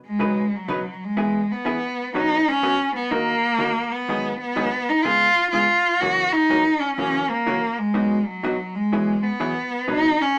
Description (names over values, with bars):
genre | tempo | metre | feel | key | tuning
country | 124 BPM | 4/4 | swing 67% on 8ths | B major | A4 = 440 Hz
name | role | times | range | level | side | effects
rich cello | melody | 0.1-10.4 s | F#3 to F#4 | -22 LUFS | equal | none
vintage hollow-body jazz guitar | accompaniment | 0.2-10.1 s | F#2 to B4 | -29 LUFS | equal | none
room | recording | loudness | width
moderate small room ambience, RT60 0.5 s | none | -22 LUFS | mono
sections
0.2-10.4 A section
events
none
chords
0.2 Badd9; 1.2 E; 2.1 Bsus2; 3.1 D#m; 4.1 G#m7; 5.0 C#7/G#; 6.0 F#7; 8.0 B; 8.9 Eadd9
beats
| 0.20 0.69 1.17 1.66 | 2.14 2.62 3.11 3.59 | 4.08 4.56 5.05 5.53 | 6.01 6.50 6.98 7.47 | 7.95 8.44 8.92 9.40 | 9.89 10.37